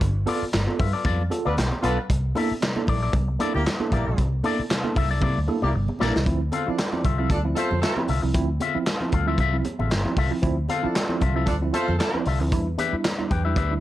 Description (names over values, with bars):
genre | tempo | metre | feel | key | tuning
funk | 115 BPM | 4/4 | swing 56% on 16ths | D minor | A4 = 441 Hz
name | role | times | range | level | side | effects
tine electric piano | stabs | 0.0-13.8 s | G2 to A4 | -28 LUFS | right 3 dB | overdrive, fast stereo tremolo
vintage muted fingered electric bass | bass | 0.0-13.8 s | G1 to C3 | -25 LUFS | equal | none
crunchy breakbeat drum kit | drums | 0.0-13.7 s | handclaps, hi-hat, kick drum, snare drum | -26 LUFS | equal | none
congas | percussion | 0.0-13.7 s | none | -34 LUFS | right 3 dB | none
electric guitar with an envelope filter | accompaniment | 0.3-13.7 s | Bb3 to G5 | -28 LUFS | left 7 dB | plate reverb
dark horn section | second line | 1.5-12.2 s | A3 to D5 | -29 LUFS | right 1 dB | plate reverb
room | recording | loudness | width
light reverb | cassette tape | -21 LUFS | side -14 dB against mid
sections
0.0-6.3 A section; 6.3-13.8 B section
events
drum fill 5.2-6.3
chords
0.0 G9; 2.1 C13; 6.3 Dm9; 12.5 Em7